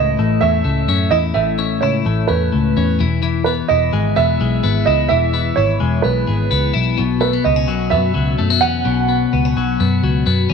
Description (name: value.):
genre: jangly indie pop.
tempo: 128 BPM.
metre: 4/4.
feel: straight.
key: E major.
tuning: A4 = 440 Hz.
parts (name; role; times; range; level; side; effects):
dark upright piano; melody; 0.0-10.2 s; B4 to F#5; -19 LUFS; right 11 dB; slapback echo.
twelve-string electric guitar; arpeggios; 0.0-10.5 s; A2 to E4; -18 LUFS; left 10 dB; phaser.
vintage muted picked electric bass; bass; 0.0-10.5 s; E1 to F#2; -18 LUFS; equal; none.
room: light reverb, small room ambience.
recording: 1960s-style stereo with parts hard left and right.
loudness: -14 LUFS.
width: side -6 dB against mid.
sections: 0.0-10.5 A section.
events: none.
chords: 0.0 A; 3.0 E; 7.0 Bsus2.